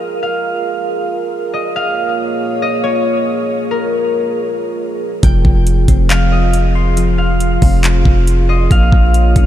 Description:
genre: hip hop, atmospheric cloud-rap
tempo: 138 BPM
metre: 4/4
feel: half-time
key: F minor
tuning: A4 = 441 Hz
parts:
  - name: concert harp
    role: melody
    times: 0.0-9.5 s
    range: Bb4 to G5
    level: -19 LUFS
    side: left 2 dB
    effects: ping-pong delay
  - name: dark analog pad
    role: sustained chords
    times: 0.0-9.5 s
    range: Bb3 to Db5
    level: -21 LUFS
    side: right 3 dB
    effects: chorus, sidechain pumping
  - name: soft electric-piano-like synth keys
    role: arpeggios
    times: 5.2-9.5 s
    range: F3 to C6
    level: -20 LUFS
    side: left 6 dB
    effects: chorus, ping-pong delay
  - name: long sustained 808-style bass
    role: bass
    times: 5.2-9.5 s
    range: F1 to Bb1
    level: -12 LUFS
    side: equal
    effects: none
  - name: smooth R&B drum kit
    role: drums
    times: 5.2-9.5 s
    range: handclaps, hi-hat, kick drum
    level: -15 LUFS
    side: equal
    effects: none
room: light reverb, digital ambience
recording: none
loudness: -12 LUFS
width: side -12 dB against mid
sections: 0.0-9.5 A section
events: none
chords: 0.0 Fm; 1.8 Bbm7; 5.2 Fm; 8.7 Bbm7

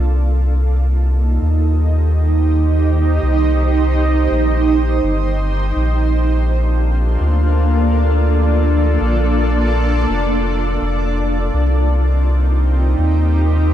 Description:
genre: ambient dub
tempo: 83 BPM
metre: 4/4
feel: swing 55% on 16ths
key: C dorian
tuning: A4 = 440 Hz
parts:
  - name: granular cloud pad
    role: sustained chords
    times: 0.0-13.7 s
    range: Bb3 to Eb5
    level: -18 LUFS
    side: right 2 dB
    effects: built-in reverb
  - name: warm sub bass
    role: bass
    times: 0.0-13.7 s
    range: F1 to Eb2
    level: -15 LUFS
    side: equal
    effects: none
room: light reverb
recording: none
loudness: -14 LUFS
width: side -11 dB against mid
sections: 0.0-13.7 A section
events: none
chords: 0.0 Cm7; 5.8 Bbmaj7; 11.5 Cm7

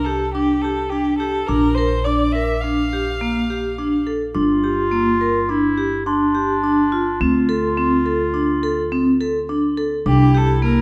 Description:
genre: contemporary instrumental, chamber music in an uneven meter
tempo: 105 BPM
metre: 5/4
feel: straight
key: D minor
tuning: A4 = 440 Hz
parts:
  - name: clear violin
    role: melody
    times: 0.0-4.1, 10.1-10.8 s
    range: G4 to F5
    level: -27 LUFS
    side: equal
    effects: none
  - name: upright bass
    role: bass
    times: 0.0-10.8 s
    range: G1 to D2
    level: -26 LUFS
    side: equal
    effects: none
  - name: vibraphone with hard mallets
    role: arpeggios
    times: 0.1-10.8 s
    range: Bb3 to Bb4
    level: -21 LUFS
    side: equal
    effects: none
  - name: glockenspiel with soft plastic mallets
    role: texture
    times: 2.1-6.6 s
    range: C6 to D6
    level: -32 LUFS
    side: equal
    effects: none
  - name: clear clarinet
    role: second line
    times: 4.3-10.8 s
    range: D4 to F4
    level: -25 LUFS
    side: equal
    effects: none
room: moderate scoring stage reverb, RT60 1.9 s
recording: none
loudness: -19 LUFS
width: mono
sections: 0.0-10.8 A section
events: none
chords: 0.0 Csus2; 1.5 Bb; 4.3 G7(no3); 7.2 Dm7; 10.1 C9

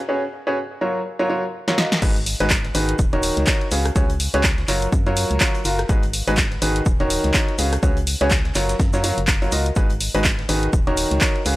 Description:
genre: piano house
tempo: 124 BPM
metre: 4/4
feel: swing 58% on 16ths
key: F# major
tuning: A4 = 440 Hz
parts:
  - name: bright baby grand piano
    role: riff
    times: 0.1-11.6 s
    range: D#3 to E#5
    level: -22 LUFS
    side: equal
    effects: sidechain pumping
  - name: punchy analog drum machine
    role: drums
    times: 1.7-11.6 s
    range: crash cymbal, handclaps, hi-hat, rim click, snare drum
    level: -23 LUFS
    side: equal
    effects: none
  - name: organ-like FM bass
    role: bass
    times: 2.0-11.6 s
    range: D#1 to F#2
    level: -24 LUFS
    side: equal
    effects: sidechain pumping
  - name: electronic kick drum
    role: drums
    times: 2.0-11.3 s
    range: none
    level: -20 LUFS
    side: equal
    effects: none
  - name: oversized low-tuned drum kit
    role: drums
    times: 2.0-11.6 s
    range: hi-hat, shaker, snare drum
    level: -36 LUFS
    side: equal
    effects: none
room: small room ambience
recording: dry, gritty hardware recording, transformer saturation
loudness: -17 LUFS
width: side -18 dB against mid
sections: 0.0-2.0 A section; 2.0-11.6 B section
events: drum fill 1.7-2.0; drop 2.0-11.6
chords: 0.0 C#7sus4; 0.8 F#maj7; 2.0 G#m7; 3.0 D#m7; 3.7 C#7sus4; 4.7 F#maj7; 5.9 G#m7; 6.9 D#m7; 7.6 C#7sus4; 8.6 F#maj7; 9.8 G#m7; 10.7 D#m7

